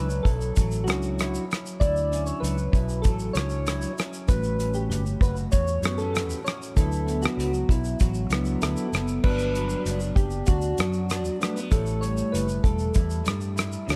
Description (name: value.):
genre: indie pop, bedroom pop.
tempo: 97 BPM.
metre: 4/4.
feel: straight.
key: D major.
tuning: A4 = 440 Hz.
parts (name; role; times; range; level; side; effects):
soft electric-piano-like synth keys; melody; 0.0-13.2 s; E4 to D5; -33 LUFS; equal; phaser, lush chorus, tape echo.
electric guitar through a small old amp; accompaniment; 0.0-14.0 s; A2 to F#4; -34 LUFS; equal; lush chorus, warbly pitch drift.
mellow tonewheel organ; accompaniment; 0.0-14.0 s; F#3 to E5; -37 LUFS; equal; slow rotary speaker.
vintage muted fingered electric bass; bass; 0.0-14.0 s; E1 to G2; -31 LUFS; equal; none.
damped 70s drum kit; drums; 0.1-14.0 s; crash cymbal, hi-hat, kick drum, rim click, shaker; -27 LUFS; equal; none.
room: light reverb.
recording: none.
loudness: -25 LUFS.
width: mono.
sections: 0.0-9.2 A section; 9.2-14.0 B section.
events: none.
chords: 0.0 Dmaj9; 4.3 A13; 6.8 D69; 9.2 Gmaj7; 11.7 A7.